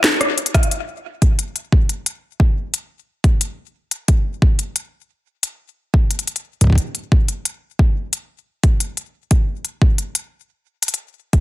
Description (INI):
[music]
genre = IDM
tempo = 89 BPM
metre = 4/4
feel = straight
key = none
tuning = none
[part]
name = organic electronic drum kit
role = drums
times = 0.0-11.4 s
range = hi-hat, rim click, snare drum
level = -18 LUFS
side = left 2 dB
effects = ping-pong delay
[part]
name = electronic kick drum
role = drums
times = 0.5-11.4 s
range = none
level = -14 LUFS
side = equal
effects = none
[sound]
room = little or no reverb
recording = dense, heavily limited modern master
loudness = -17 LUFS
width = side -16 dB against mid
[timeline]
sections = 0.7-11.4 A section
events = drum fill 0.4-0.7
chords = none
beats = 0.04 | 0.71 1.39 2.06 2.74 | 3.41 4.08 4.76 5.43 | 6.11 6.78 7.46 8.13 | 8.80 9.48 10.15 10.83